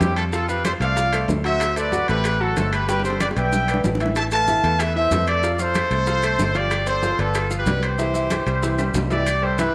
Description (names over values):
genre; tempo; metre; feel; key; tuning
latin, salsa; 188 BPM; 4/4; straight; C major; A4 = 438 Hz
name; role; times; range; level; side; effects
bright trumpet section; melody; 0.0-9.7 s; E4 to A5; -25 LUFS; equal; slapback echo
bright upright piano; accompaniment; 0.0-9.7 s; E3 to G5; -28 LUFS; equal; none
fingered electric bass; bass; 0.0-9.7 s; G1 to F2; -27 LUFS; equal; none
bongos; percussion; 0.0-9.3 s; none; -34 LUFS; equal; none
congas; percussion; 0.0-9.7 s; none; -33 LUFS; equal; none
maracas; percussion; 0.0-9.7 s; none; -41 LUFS; equal; none
timbales; percussion; 0.0-9.7 s; none; -33 LUFS; equal; none
claves; percussion; 0.2-9.4 s; none; -39 LUFS; equal; none
room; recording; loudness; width
moderate echo chamber reverb, RT60 1.8 s, studio reverb; none; -21 LUFS; mono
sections
0.0-9.3 A section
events
drum fill 2.9-4.2, 8.8-9.3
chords
0.3 F; 1.6 D7; 2.9 G; 4.2 Asus2; 5.4 F; 6.7 G7sus4; 8.0 C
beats
0.01 | 0.33 0.65 0.97 1.29 | 1.61 1.93 2.25 2.57 | 2.88 3.21 3.52 3.84 | 4.16 4.48 4.80 5.12 | 5.44 5.76 6.08 6.39 | 6.71 7.03 7.35 7.67 | 7.99 8.31 8.63 8.95 | 9.27 9.59